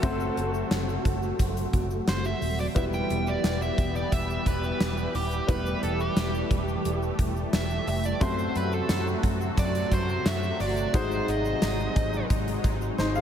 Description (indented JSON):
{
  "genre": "1980s-style pop",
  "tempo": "88 BPM",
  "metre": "4/4",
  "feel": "straight",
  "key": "E minor",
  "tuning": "A4 = 440 Hz",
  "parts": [
    { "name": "nasal lead guitar with a parked wah", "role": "melody", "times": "0.0-12.3 s", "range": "G4 to G5", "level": "-32 LUFS", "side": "right 1 dB", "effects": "overdrive, ping-pong delay" },
    { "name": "bright concert grand piano", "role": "accompaniment", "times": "0.0-13.2 s", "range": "G3 to F5", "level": "-33 LUFS", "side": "left 2 dB", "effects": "lush chorus" },
    { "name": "sweeping resonant pad", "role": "sustained chords", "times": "0.0-13.2 s", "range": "C3 to G4", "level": "-31 LUFS", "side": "equal", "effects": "chorus" },
    { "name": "vintage muted fingered electric bass", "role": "bass", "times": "0.0-13.2 s", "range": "D#1 to F#2", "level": "-31 LUFS", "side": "equal", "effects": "none" },
    { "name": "gated 80s drum kit", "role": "drums", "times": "0.0-13.1 s", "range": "hi-hat, kick drum, snare drum, tambourine", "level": "-29 LUFS", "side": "equal", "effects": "none" },
    { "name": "tube shaker", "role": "percussion", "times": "0.0-13.2 s", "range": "none", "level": "-52 LUFS", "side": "left 7 dB", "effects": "none" }
  ],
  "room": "wet huge ambient reverb, RT60 7.6 s",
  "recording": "dreamy mix soaked in reverb",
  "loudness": "-24 LUFS",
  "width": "side -9 dB against mid",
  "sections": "0.0-13.2 A section",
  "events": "lead electric guitar solo 0.0-13.2; drum fill 13.0",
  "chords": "0.0 F#dim; 2.8 Em; 8.2 F#dim; 10.9 G#7"
}